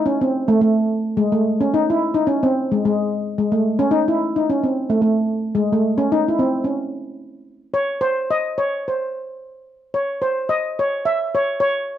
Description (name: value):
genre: balkan folk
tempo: 109 BPM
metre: 2/4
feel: swing 54% on 16ths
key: unclear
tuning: A4 = 440 Hz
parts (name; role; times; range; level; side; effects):
- steel pan; solo; 0.0-12.0 s; G#3 to E5; -18 LUFS; equal; none
room: light reverb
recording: dry, close 1970s-style studio recording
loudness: -17 LUFS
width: side -11 dB against mid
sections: 0.0-7.8 A section; 7.8-12.0 B section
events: none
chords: none